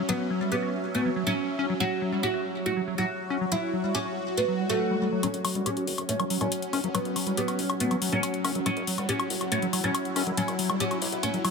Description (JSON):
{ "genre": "psychedelic trance", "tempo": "140 BPM", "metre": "4/4", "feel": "straight", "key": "unclear", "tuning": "A4 = 442 Hz", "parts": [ { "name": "evolving wavetable pad", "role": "sustained chords", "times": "0.0-11.5 s", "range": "F#3 to F#4", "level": "-32 LUFS", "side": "equal", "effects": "phaser, built-in reverb" }, { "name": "liquid acid bass", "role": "riff", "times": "0.0-11.5 s", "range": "F#3 to G4", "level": "-31 LUFS", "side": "moving between left 6 dB and right 5 dB", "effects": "chorus, auto-pan, digital delay" }, { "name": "airy breathy pad", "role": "texture", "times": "0.0-11.5 s", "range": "F#4 to F#5", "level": "-35 LUFS", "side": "right 1 dB", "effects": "chorus" }, { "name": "oud", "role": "melody", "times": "0.1-11.4 s", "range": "A3 to F#4", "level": "-30 LUFS", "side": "right 1 dB", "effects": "phaser, low-pass filter, digital delay" }, { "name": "swell", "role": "sound effects", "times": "4.5-5.2 s", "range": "none", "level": "-37 LUFS", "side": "left 1 dB", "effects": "none" }, { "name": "electronic hi-hat and woodblock", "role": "drums", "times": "5.2-11.5 s", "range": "none", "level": "-30 LUFS", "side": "left 3 dB", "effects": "none" }, { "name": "fat analog bass", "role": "bass", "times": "5.3-11.4 s", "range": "F#1 to B1", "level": "-40 LUFS", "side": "equal", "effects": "high-pass filter" } ], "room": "light reverb", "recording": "none", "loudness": "-25 LUFS", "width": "side -5 dB against mid", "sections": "0.0-5.2 A section; 5.2-11.5 B section", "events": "swell 4.5-5.2; build-up 5.2-11.5; filter sweep on acid bass 5.2-11.5; filter sweep on oud 5.2-11.5", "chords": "0.0 F#5" }